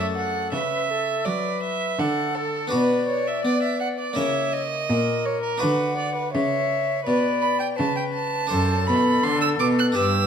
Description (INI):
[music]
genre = classical, baroque-style sonata movement with continuo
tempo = 83 BPM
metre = 4/4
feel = straight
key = unclear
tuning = A4 = 440 Hz
[part]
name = silver concert flute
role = melody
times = 0.0-10.3 s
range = G4 to F#5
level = -27 LUFS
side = left 8 dB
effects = none
[part]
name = warm violin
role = second line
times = 0.0-10.3 s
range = A4 to F#6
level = -25 LUFS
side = right 6 dB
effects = none
[part]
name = harpsichord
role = accompaniment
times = 0.0-10.3 s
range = F#2 to C5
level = -28 LUFS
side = left 3 dB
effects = none
[part]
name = warm cello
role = bass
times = 0.0-10.3 s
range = F#2 to B3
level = -26 LUFS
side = right 1 dB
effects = none
[sound]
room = moderate recital hall reverb, RT60 1.4 s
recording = close, detailed microphones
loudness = -20 LUFS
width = side -7 dB against mid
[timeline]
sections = 0.0-10.3 A section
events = none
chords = 0.0 D/F#; 2.7 Bm; 4.2 A#dim/C#; 5.6 Bm; 8.5 D7/F#